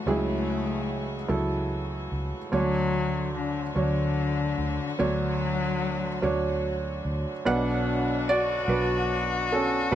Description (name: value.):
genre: acoustic folk-pop ballad.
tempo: 49 BPM (dotted quarters).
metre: 6/8.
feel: straight.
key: unclear.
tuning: A4 = 436 Hz.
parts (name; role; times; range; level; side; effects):
felt-muted upright piano; melody; 0.0-9.9 s; B1 to F#5; -27 LUFS; right 3 dB; none.
warm cello; second line; 0.0-9.9 s; D3 to F#4; -29 LUFS; left 5 dB; none.
rich chamber string section; sustained chords; 0.0-9.9 s; D3 to G#5; -38 LUFS; left 3 dB; none.
vintage muted fingered electric bass; bass; 0.1-9.9 s; B1 to D2; -31 LUFS; equal; none.
room: light reverb.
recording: none.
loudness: -24 LUFS.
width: side -11 dB against mid.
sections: 0.0-7.5 A section; 7.5-9.9 B section.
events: cello solo 0.0-7.5.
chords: 0.0 F#m7/C#; 2.5 Dmaj7; 7.5 Bm.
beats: | 0.07 1.30 | 2.54 3.77 | 5.00 6.23 | 7.46 8.69 | 9.92.